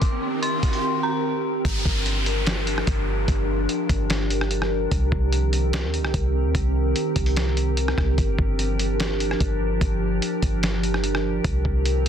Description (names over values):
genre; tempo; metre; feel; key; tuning
hip hop, atmospheric cloud-rap; 147 BPM; 4/4; half-time; G minor; A4 = 440 Hz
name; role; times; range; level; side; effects
glassy FM pad; sustained chords; 0.0-12.1 s; Eb3 to Bb4; -25 LUFS; equal; ensemble chorus, built-in reverb, sidechain pumping, low-pass filter
lo-fi sampler-style drum kit; drums; 0.0-12.1 s; hi-hat, kick drum, rim click, snare drum; -25 LUFS; equal; none
riser and downlifter; sound effects; 0.0-4.9 s; none; -31 LUFS; equal; none
dark detuned synth bell; melody; 0.4-1.2 s; Bb5 to C6; -29 LUFS; left 1 dB; chorus, phaser, low-pass filter, ping-pong delay
soft 808-style bass; bass; 1.6-12.1 s; G1 to Eb2; -24 LUFS; equal; none
room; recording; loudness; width
little or no reverb; dense, heavily limited modern master; -20 LUFS; side -8 dB against mid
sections
0.0-1.6 A section; 1.6-12.1 B section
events
riser 0.0-1.6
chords
0.0 Cm7; 1.6 Gm7; 4.9 Cm7; 8.2 Gm7; 11.4 Cm7